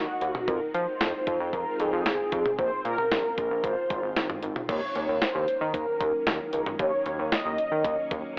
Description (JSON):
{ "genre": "synth-pop", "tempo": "114 BPM", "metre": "4/4", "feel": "straight", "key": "unclear", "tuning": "A4 = 440 Hz", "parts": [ { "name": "mellow synth brass", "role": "melody", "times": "0.0-8.4 s", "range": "Gb4 to Eb5", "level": "-30 LUFS", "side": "equal", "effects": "chorus, cassette tape" }, { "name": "soft string machine", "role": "sustained chords", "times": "0.0-8.4 s", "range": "Db3 to Gb4", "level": "-40 LUFS", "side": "equal", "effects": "ensemble chorus, cassette tape" }, { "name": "chorused synth bass", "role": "bass", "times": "0.0-8.2 s", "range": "Ab1 to F3", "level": "-33 LUFS", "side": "equal", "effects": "none" }, { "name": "clean 12-bit digital drum machine", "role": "drums", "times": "0.2-8.2 s", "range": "crash cymbal, hi-hat, kick drum, snare drum, toms", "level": "-32 LUFS", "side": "equal", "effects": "overdrive, cassette tape" } ], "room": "moderate studio reverb, RT60 0.7 s", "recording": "home recording on cassette, telephone sound", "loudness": "-28 LUFS", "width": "mono", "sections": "0.0-4.7 A section; 4.7-8.4 B section", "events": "none", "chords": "0.5 Fm7; 2.6 Bbmadd9; 3.6 Ab6; 4.7 Ebm7" }